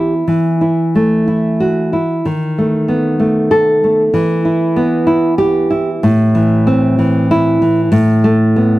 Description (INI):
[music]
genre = romantic piece for solo classical guitar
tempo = 94 BPM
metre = 3/4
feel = uneven beats, rubato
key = E minor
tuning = A4 = 440 Hz
[part]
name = nylon-string guitar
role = solo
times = 0.0-8.8 s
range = A2 to A4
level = -11 LUFS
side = equal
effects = none
[sound]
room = small room ambience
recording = dry, close 1970s-style studio recording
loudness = -11 LUFS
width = side -17 dB against mid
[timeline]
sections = 0.0-8.8 A section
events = none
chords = 0.3 Esus24; 2.2 B7/D#; 4.1 Em; 6.0 Am; 7.9 B7(no3)/A